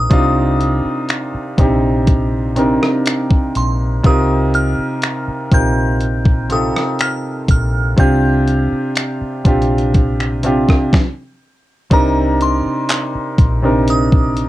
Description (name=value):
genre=contemporary R&B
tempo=61 BPM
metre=4/4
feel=straight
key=C dorian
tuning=A4 = 445 Hz
part: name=glassy synth bell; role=melody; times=0.0-14.5 s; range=Bb5 to G6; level=-22 LUFS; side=left 1 dB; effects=chorus, phaser, tape echo
part: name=warm grand piano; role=accompaniment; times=0.0-14.5 s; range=C3 to Bb4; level=-17 LUFS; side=equal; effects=none
part: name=vintage muted fingered electric bass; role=bass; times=0.0-14.5 s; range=Bb1 to C2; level=-18 LUFS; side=equal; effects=none
part: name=crisp 8-bit digital drum machine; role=drums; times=0.1-14.5 s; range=finger snaps, handclaps, hi-hat, kick drum, rim click, snare drum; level=-14 LUFS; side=equal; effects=overdrive
room=moderate small room reverb, RT60 0.5 s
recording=cassette tape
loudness=-13 LUFS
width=side -15 dB against mid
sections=0.0-11.9 A section; 11.9-14.5 B section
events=stop 10.9-11.9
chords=0.0 Cm7; 4.0 F9sus4; 8.0 Bb69; 11.9 Cm7